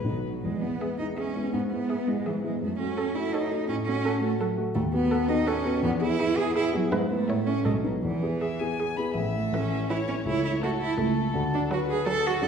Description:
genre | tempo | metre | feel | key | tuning
quick classical-period movement for piano quartet | 165 BPM | 3/4 | rubato | E major, A major from 9.2 s | A4 = 440 Hz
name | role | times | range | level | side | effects
warm violin | melody | 0.0-12.5 s | F#4 to B5 | -36 LUFS | left 4 dB | none
rich cello | second line | 0.0-12.5 s | D#3 to A4 | -28 LUFS | right 3 dB | none
warm baby grand piano | accompaniment | 0.0-12.5 s | A1 to B4 | -28 LUFS | left 1 dB | none
rich viola | accompaniment | 0.8-12.3 s | E3 to C#5 | -34 LUFS | right 3 dB | none
room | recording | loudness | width
wet scoring stage reverb, RT60 1.6 s | heard from further back in the room | -24 LUFS | side -7 dB against mid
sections
0.4-9.2 A section; 9.2-12.5 B section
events
none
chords
0.1 B; 0.4 E; 1.5 E/G#; 2.6 F#m; 3.7 F#m/A; 4.8 B7/D#; 5.8 E; 6.9 E/G#; 7.3 A; 7.7 B7; 8.0 E; 9.2 A; 10.3 A/C#; 11.4 D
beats
0.06 | 0.44 0.81 1.18 | 1.54 1.90 2.26 | 2.62 2.98 3.33 | 3.69 4.05 4.40 | 4.76 5.11 5.47 | 5.83 6.19 6.56 | 6.92 7.29 7.66 | 8.03 8.41 8.79 | 9.16 9.53 9.90 | 10.26 10.62 10.99 | 11.35 11.71 12.07 | 12.44

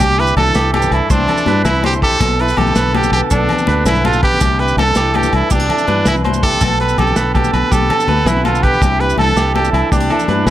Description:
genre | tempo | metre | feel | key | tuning
highlife guitar band | 109 BPM (dotted quarters) | 12/8 | straight | C major | A4 = 442 Hz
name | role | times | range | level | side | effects
brilliant trumpet | melody | 0.0-10.5 s | D4 to B4 | -17 LUFS | right 1 dB | none
fingerpicked steel-string acoustic guitar | accompaniment | 0.0-10.5 s | G2 to G4 | -23 LUFS | left 3 dB | none
electric guitar at the edge of break-up | arpeggios | 0.0-10.5 s | G4 to C5 | -19 LUFS | right 5 dB | none
fingered electric bass | bass | 0.0-10.5 s | B1 to G2 | -18 LUFS | equal | none
crunchy breakbeat drum kit | drums | 0.0-10.5 s | hi-hat, kick drum, snare drum | -19 LUFS | equal | none
agogo bells | percussion | 0.0-10.5 s | none | -26 LUFS | left 6 dB | none
congas | percussion | 0.0-10.5 s | none | -22 LUFS | left 6 dB | none
maracas | percussion | 0.0-10.5 s | none | -29 LUFS | right 7 dB | none
room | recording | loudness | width
light reverb, small room ambience | none | -12 LUFS | side -13 dB against mid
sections
0.0-10.5 A section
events
none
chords
0.0 Cadd9; 2.2 Gadd9/B; 4.4 Cadd9; 6.6 Gadd9/B; 8.8 Cadd9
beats
| 0.00 0.55 1.10 1.65 | 2.20 2.75 3.31 3.86 | 4.41 4.96 5.51 6.06 | 6.61 7.16 7.71 8.26 | 8.81 9.37 9.92 10.47

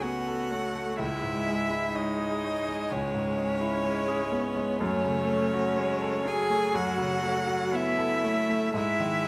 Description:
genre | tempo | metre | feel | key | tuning
classical, slow romantic movement for piano quartet | 62 BPM | 4/4 | rubato | unclear | A4 = 441 Hz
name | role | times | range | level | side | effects
rich violin | melody | 0.0-9.3 s | C#5 to G#5 | -33 LUFS | equal | none
rich cello | second line | 0.0-9.3 s | C#4 to G#4 | -36 LUFS | equal | none
bright grand piano | accompaniment | 0.0-9.3 s | C#2 to C#5 | -33 LUFS | equal | none
clear viola | accompaniment | 0.0-9.3 s | F#3 to B3 | -36 LUFS | equal | none
room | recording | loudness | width
moderate recital hall reverb, RT60 1.5 s | none | -28 LUFS | mono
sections
0.0-9.3 A section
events
none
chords
0.0 F#m/C#; 1.0 C#m; 4.8 F#m; 8.8 G#5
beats
0.03 | 0.98 1.94 2.90 3.84 | 4.80 5.78 6.74 7.73 | 8.76

